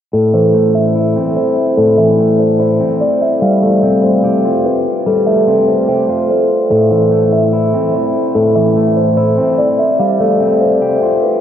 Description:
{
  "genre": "hip hop",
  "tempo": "146 BPM",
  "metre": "4/4",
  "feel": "half-time",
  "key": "A minor",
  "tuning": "A4 = 440 Hz",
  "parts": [
    { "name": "buzzing kalimba", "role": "melody", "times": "0.1-11.4 s", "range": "A4 to F5", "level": "-12 LUFS", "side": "equal", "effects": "analog delay" },
    { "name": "electric guitar at the edge of break-up", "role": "accompaniment", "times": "0.1-11.4 s", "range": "A2 to G4", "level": "-14 LUFS", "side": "equal", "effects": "none" }
  ],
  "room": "wet huge ambient reverb, RT60 7.8 s",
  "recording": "dreamy mix soaked in reverb, low-pass filter, nothing above 10.7 kHz",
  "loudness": "-10 LUFS",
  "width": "side -9 dB against mid",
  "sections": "0.1-11.4 A section",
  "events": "filter sweep 0.1-11.4",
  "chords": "0.1 Am; 3.4 Fadd9; 6.7 Am; 10.0 Fadd9"
}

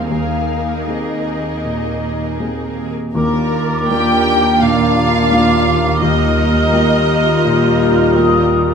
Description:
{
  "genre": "cinematic",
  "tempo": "77-87 BPM",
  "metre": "4/4",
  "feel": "rubato",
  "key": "unclear",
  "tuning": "A4 = 441 Hz",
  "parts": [
    { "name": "muted studio violin section", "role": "melody", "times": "0.0-8.4 s", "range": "Bb3 to F5", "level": "-25 LUFS", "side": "left 2 dB", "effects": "none" },
    { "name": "muted symphonic violin section", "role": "second line", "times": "0.0-8.4 s", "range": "Ab4 to G5", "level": "-19 LUFS", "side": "equal", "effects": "none" },
    { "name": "muted symphonic viola section", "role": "accompaniment", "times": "0.0-8.7 s", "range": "G3 to F4", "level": "-24 LUFS", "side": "right 2 dB", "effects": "none" },
    { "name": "warm grand piano", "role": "accompaniment", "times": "0.0-8.7 s", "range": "Eb2 to Ab4", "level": "-19 LUFS", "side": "left 1 dB", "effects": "none" },
    { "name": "muted symphonic cello section", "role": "bass", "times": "0.0-8.7 s", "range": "Eb2", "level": "-22 LUFS", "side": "right 2 dB", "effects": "none" },
    { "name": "mellow clarinet", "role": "second line", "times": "3.1-8.7 s", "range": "F4 to G4", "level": "-24 LUFS", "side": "left 5 dB", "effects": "none" },
    { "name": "mellow cor anglais", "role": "second line", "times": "3.1-8.7 s", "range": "Bb4", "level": "-24 LUFS", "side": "right 4 dB", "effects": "none" },
    { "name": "mellow hollow flute section", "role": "second line", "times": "3.1-8.7 s", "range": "D6 to F6", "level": "-21 LUFS", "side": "left 1 dB", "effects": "none" },
    { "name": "mellow French horn section", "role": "sustained chords", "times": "3.1-8.7 s", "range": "G3 to F4", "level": "-21 LUFS", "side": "left 4 dB", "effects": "none" },
    { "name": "muted symphonic double bass section", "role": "bass", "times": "3.1-8.7 s", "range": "Eb2", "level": "-21 LUFS", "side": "right 3 dB", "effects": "none" }
  ],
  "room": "wet recital hall reverb, RT60 1.5 s",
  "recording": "none",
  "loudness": "-12 LUFS",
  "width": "side -6 dB against mid",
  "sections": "0.0-3.2 A section; 3.2-8.7 A section",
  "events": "none",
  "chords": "0.1 Abadd9/Eb; 3.2 Bb/Eb; 6.0 Ebadd9"
}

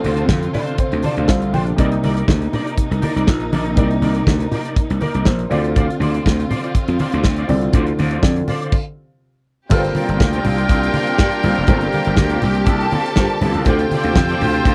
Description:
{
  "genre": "disco",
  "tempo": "121 BPM",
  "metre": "4/4",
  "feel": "straight",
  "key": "G minor",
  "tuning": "A4 = 443 Hz",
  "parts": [
    { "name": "electric guitar at the edge of break-up", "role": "accompaniment", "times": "0.0-14.7 s", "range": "C4 to D5", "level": "-30 LUFS", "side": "equal", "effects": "ensemble chorus" },
    { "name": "warm baby grand piano", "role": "accompaniment", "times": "0.0-14.7 s", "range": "C3 to G5", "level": "-27 LUFS", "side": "equal", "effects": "none" },
    { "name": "warm studio string section", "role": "sustained chords", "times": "0.0-14.7 s", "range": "C3 to G4", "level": "-28 LUFS", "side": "equal", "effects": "none" },
    { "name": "warm soul drum kit", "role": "drums", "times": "0.0-14.7 s", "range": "crash cymbal, hi-hat, kick drum, snare drum", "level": "-18 LUFS", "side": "equal", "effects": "none" },
    { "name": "congas", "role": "percussion", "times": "0.0-14.7 s", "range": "none", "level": "-26 LUFS", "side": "equal", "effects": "none" },
    { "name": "gritty slap bass", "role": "bass", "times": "0.1-14.7 s", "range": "F1 to G2", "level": "-22 LUFS", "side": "equal", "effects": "overdrive" },
    { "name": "warm symphonic violin section", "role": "second line", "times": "9.7-14.7 s", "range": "G4 to A5", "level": "-27 LUFS", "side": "equal", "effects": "none" },
    { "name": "clear horn section", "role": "stabs", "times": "9.7-14.7 s", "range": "D4 to C5", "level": "-25 LUFS", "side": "equal", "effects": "none" }
  ],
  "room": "little or no reverb",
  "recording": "dry, close 1970s-style studio recording",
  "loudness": "-17 LUFS",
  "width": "mono",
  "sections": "0.0-9.7 A section; 9.7-14.7 B section",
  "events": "grand piano fill 0.3-1.8, 4.8-5.8; stop 8.7-9.7",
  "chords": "0.0 Dm7; 1.8 Cm9; 5.5 Dm7; 9.7 Gm11; 13.7 Dm7"
}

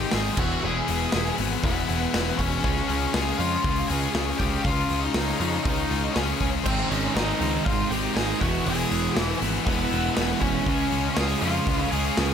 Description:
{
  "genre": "quiet-loud alternative rock",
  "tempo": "120 BPM",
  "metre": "4/4",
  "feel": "straight",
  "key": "unclear",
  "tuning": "A4 = 440 Hz",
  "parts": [
    { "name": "octave-fuzz lead guitar", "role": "melody", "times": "0.0-12.3 s", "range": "B3 to Ab5", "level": "-29 LUFS", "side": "equal", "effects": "distortion, plate reverb" },
    { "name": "muted studio string section", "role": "sustained chords", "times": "0.0-12.3 s", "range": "Ab3 to E6", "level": "-39 LUFS", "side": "left 4 dB", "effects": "none" },
    { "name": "heavy high-gain guitar", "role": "riff", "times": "0.0-12.3 s", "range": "Ab2 to F4", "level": "-30 LUFS", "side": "left 14 dB", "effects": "distortion" },
    { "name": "thick fuzz guitar", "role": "riff", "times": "0.0-12.3 s", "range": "E2 to Db4", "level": "-30 LUFS", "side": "equal", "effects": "distortion" },
    { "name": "growling picked electric bass", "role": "bass", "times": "0.0-12.3 s", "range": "E1 to F2", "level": "-29 LUFS", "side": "equal", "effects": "overdrive" },
    { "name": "big rock drum kit", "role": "drums", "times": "0.1-12.3 s", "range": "crash cymbal, hi-hat, kick drum, snare drum", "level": "-28 LUFS", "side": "equal", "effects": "none" },
    { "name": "crunchy overdriven guitar", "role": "riff", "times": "6.6-12.3 s", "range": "Ab2 to F4", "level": "-30 LUFS", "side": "right 14 dB", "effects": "none" }
  ],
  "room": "light reverb",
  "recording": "none",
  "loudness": "-22 LUFS",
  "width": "side -8 dB against mid",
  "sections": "0.0-12.3 A section",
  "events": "none",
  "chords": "0.4 Eadd9; 2.6 Dbadd9; 6.7 Abmaj7; 8.4 Eadd9; 10.7 Dbadd9"
}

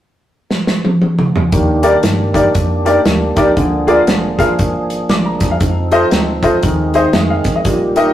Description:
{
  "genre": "uptempo gospel",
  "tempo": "118 BPM",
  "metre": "4/4",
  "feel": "swing 61% on 8ths",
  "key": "Eb major",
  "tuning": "A4 = 440 Hz",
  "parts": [
    { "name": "modern studio drum kit", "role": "drums", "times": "0.5-8.1 s", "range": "hi-hat, kick drum, snare drum, toms", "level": "-15 LUFS", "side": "equal", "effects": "none" },
    { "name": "clear baby grand piano", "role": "accompaniment", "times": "1.5-8.1 s", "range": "Bb2 to D6", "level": "-14 LUFS", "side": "left 1 dB", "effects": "none" },
    { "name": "tonewheel organ", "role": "sustained chords", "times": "1.5-8.1 s", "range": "Eb3 to A4", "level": "-20 LUFS", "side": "right 2 dB", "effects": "slow rotary speaker, overdrive, chorus vibrato" },
    { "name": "metallic FM bass", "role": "bass", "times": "1.5-8.1 s", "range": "F1 to G2", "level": "-21 LUFS", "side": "equal", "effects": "none" }
  ],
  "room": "moderate stone room reverb, RT60 1.0 s",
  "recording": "rough rehearsal-room recording, tube saturation",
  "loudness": "-11 LUFS",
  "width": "side -12 dB against mid",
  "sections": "0.0-1.5 A section; 1.5-8.1 B section",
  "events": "drum fill 0.5-1.5",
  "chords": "0.0 N.C.; 1.5 Ebmaj7; 3.6 Bb7; 5.6 F7; 6.6 Ab/Eb"
}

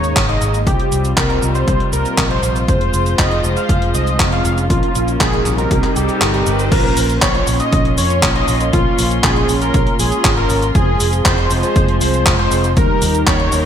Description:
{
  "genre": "italo disco",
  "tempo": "119 BPM",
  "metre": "4/4",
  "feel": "straight",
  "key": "unclear",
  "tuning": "A4 = 440 Hz",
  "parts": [
    { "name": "wide unison lead", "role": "melody", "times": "0.0-13.6 s", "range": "F4 to F5", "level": "-20 LUFS", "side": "equal", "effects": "ping-pong delay" },
    { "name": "warm studio string section", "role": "sustained chords", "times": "0.0-13.7 s", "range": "Eb3 to C6", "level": "-23 LUFS", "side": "equal", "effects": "none" },
    { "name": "mellow synth brass", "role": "stabs", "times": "0.0-13.7 s", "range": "Ab2 to F5", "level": "-23 LUFS", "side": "left 1 dB", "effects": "chorus" },
    { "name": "fingered electric bass with an envelope filter", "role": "bass", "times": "0.0-13.7 s", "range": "F1 to F2", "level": "-19 LUFS", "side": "equal", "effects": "none" },
    { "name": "gated 80s digital drum machine", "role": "drums", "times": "0.0-13.6 s", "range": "cabasa, crash cymbal, handclaps, hi-hat", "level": "-19 LUFS", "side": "equal", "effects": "gated reverb, overdrive" },
    { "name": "electronic kick drum", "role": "drums", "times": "0.2-13.4 s", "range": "none", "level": "-18 LUFS", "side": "equal", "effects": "overdrive" },
    { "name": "riser", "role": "sound effects", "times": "4.5-6.7 s", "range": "none", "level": "-26 LUFS", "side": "equal", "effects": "none" }
  ],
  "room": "light reverb, digital ambience",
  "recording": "bright 1980s-style digital production",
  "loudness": "-13 LUFS",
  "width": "side -9 dB against mid",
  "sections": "0.0-6.7 A section; 6.7-13.7 B section",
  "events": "riser 4.5-6.7; kick drops out 6.2-6.7",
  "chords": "0.0 Absus2; 0.7 Csus4; 2.7 Fm; 4.7 Bbm; 5.7 Cm; 6.7 Bbmadd9; 10.8 Fm; 12.8 Eb"
}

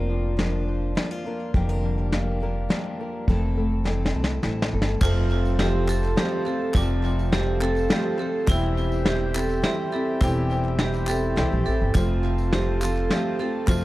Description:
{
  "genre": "indie folk with a building arrangement",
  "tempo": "104 BPM",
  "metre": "3/4",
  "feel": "straight",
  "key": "F major",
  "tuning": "A4 = 440 Hz",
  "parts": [
    { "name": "fingerpicked old ladder-braced acoustic guitar", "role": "accompaniment", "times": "0.0-6.8 s", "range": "F2 to C5", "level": "-33 LUFS", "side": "left 1 dB", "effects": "tape echo" },
    { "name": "picked steel-string acoustic guitar", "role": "accompaniment", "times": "0.0-13.8 s", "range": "F2 to A4", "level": "-29 LUFS", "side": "left 2 dB", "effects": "tape echo" },
    { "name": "upright bass", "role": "bass", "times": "0.0-13.8 s", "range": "E1 to C2", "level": "-25 LUFS", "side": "equal", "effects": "none" },
    { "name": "soft brush drum kit", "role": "drums", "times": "0.4-13.8 s", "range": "crash cymbal, hi-hat, kick drum, snare drum", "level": "-25 LUFS", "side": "equal", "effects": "none" },
    { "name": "clear upright piano", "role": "accompaniment", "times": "5.0-13.8 s", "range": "F1 to G5", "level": "-32 LUFS", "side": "equal", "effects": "tape echo" },
    { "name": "pedal harmonium", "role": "sustained chords", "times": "5.0-13.8 s", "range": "E4 to A5", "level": "-33 LUFS", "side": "right 1 dB", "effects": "none" },
    { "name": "vibraphone with hard mallets", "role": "arpeggios", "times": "5.0-13.8 s", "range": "E4 to A4", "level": "-28 LUFS", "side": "right 3 dB", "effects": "tape echo" },
    { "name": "group handclap", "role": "percussion", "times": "5.0-13.8 s", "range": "none", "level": "-37 LUFS", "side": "left 2 dB", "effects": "none" },
    { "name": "tambourine", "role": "percussion", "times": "5.0-13.8 s", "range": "none", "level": "-46 LUFS", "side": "left 2 dB", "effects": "tape echo" }
  ],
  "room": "light reverb, small room reverb",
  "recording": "echo-heavy mix",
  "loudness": "-21 LUFS",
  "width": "side -17 dB against mid",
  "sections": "0.0-5.0 A section; 5.0-13.8 B section",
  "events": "drum fill 3.9-5.0; upright piano fill 7.3-8.5, 11.1-11.9",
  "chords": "0.0 Bb/F; 1.5 Gm/F; 3.3 Am/F; 5.0 F; 8.5 C/E; 11.9 F"
}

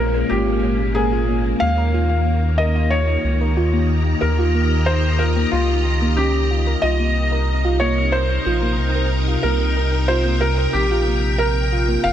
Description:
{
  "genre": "IDM",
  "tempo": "92 BPM",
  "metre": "4/4",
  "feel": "straight",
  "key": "unclear",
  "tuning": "A4 = 440 Hz",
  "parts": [
    { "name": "felt-muted upright piano", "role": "melody", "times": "0.0-12.1 s", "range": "F4 to F5", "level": "-22 LUFS", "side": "equal", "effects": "vintage 12-bit sampler grit, ping-pong delay" },
    { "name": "soft string machine", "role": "sustained chords", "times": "0.0-12.1 s", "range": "Bb2 to Bb5", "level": "-23 LUFS", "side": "left 1 dB", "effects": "ensemble chorus, vintage 12-bit sampler grit" },
    { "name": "rubbery square bass", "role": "bass", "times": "0.0-12.1 s", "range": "F1 to Eb2", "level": "-20 LUFS", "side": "equal", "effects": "tube saturation" },
    { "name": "harp-like synth pluck", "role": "arpeggios", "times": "0.1-12.0 s", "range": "Bb3 to Bb4", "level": "-25 LUFS", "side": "right 2 dB", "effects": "chorus, ping-pong delay" }
  ],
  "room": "light reverb",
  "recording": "none",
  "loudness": "-16 LUFS",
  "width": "side -10 dB against mid",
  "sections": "0.0-12.1 A section",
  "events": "none",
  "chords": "0.0 Bbm7; 1.6 Eb; 6.8 Cm7"
}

